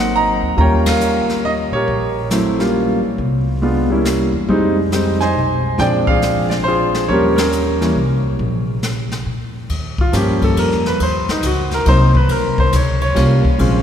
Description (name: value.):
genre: jazz piano trio.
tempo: 138 BPM.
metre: 3/4.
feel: swing 66% on 8ths.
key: Eb mixolydian.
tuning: A4 = 441 Hz.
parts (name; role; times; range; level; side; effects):
clear concert grand piano; melody; 0.0-13.8 s; Fb3 to Bb5; -16 LUFS; equal; none.
upright bass; bass; 0.0-13.8 s; Ab1 to Bb2; -19 LUFS; equal; none.
jazz brush drum kit; drums; 0.6-13.7 s; brushed snare drum, hi-hat, kick drum, ride cymbal, snare drum; -23 LUFS; left 2 dB; none.
room: wet church reverb, RT60 3.5 s.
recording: recorded in a church or concert hall.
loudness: -14 LUFS.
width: side -8 dB against mid.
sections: 0.0-9.7 A section; 9.7-13.8 B section.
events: band accent 0.8, 7.3; grand piano solo 9.7-13.8.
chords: 0.0 Ab7; 0.6 Eb7; 3.2 C7b9; 4.5 Fm7; 5.8 Bb7; 7.1 Eb7; 8.0 C5; 8.4 N.C.; 9.7 Eb7; 11.0 Cm7b5.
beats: 0.15 | 0.58 1.01 1.45 | 1.88 2.32 2.75 | 3.19 3.62 4.06 | 4.49 4.92 5.36 | 5.79 6.23 6.66 | 7.09 7.53 7.96 | 8.39 8.83 9.26 | 9.70 10.13 10.56 | 11.00 11.43 11.86 | 12.30 12.73 13.16 | 13.60.